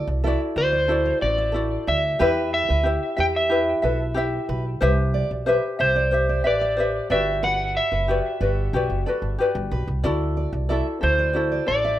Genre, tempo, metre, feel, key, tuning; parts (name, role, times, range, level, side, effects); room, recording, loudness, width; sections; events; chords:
acoustic pop; 92 BPM; 4/4; straight; G major; A4 = 440 Hz
ukulele; accompaniment; 0.0-12.0 s; E4 to E5; -25 LUFS; left 2 dB; plate reverb
fingerpicked steel-string acoustic guitar; arpeggios; 0.0-12.0 s; G4 to E5; -32 LUFS; right 5 dB; plate reverb
upright bass; bass; 0.1-12.0 s; F#1 to E2; -25 LUFS; right 1 dB
electric slide guitar; melody; 0.6-12.0 s; C5 to G5; -22 LUFS; equal; plate reverb, tape echo
moderate studio reverb, RT60 0.5 s; rough home demo mix; -20 LUFS; side -13 dB against mid
0.0-12.0 A section
0.0 Dadd9; 2.2 Em; 4.8 Cmaj7; 7.1 Gmaj7; 10.0 Dadd9